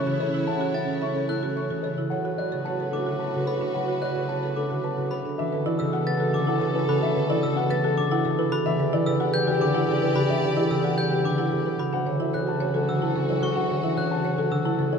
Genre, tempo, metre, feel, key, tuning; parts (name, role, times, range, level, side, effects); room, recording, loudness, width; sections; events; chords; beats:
classical, minimalist pattern music; 110 BPM; 3/4; straight; A4 = 440 Hz
dark baby grand piano; melody; 0.0-15.0 s; G4 to C#6; -31 LUFS; left 8 dB
mellow hollow wooden-headed alto flute; second line; 0.0-14.9 s; C#4 to A4; -33 LUFS; right 4 dB
concert harp; accompaniment; 0.0-15.0 s; C#3 to E4; -26 LUFS; left 1 dB
rich studio violin section; sustained chords; 0.0-15.0 s; C#4 to D5; -33 LUFS; left 3 dB
buzzing marimba with medium hard mallets; arpeggios; 0.0-15.0 s; D4 to E5; -30 LUFS; right 9 dB
mellow bassoon; bass; 0.0-15.0 s; D2 to B2; -32 LUFS; right 2 dB
glockenspiel with hard plastic mallets; arpeggios; 0.7-14.7 s; B5 to A6; -34 LUFS; left 4 dB
moderate scoring stage reverb, RT60 2.1 s; -22 LUFS; side -6 dB against mid
0.0-5.4 A section; 5.4-15.0 B section
0.0 A; 2.1 D6/A; 5.4 Bm9; 8.7 Em9; 11.9 Dmaj7
| 0.47 1.02 1.56 | 2.11 2.65 3.20 | 3.75 4.29 4.84 | 5.38 5.93 6.47 | 7.02 7.56 8.11 | 8.65 9.20 9.74 | 10.29 10.84 11.38 | 11.93 12.47 13.02 | 13.56 14.11 14.65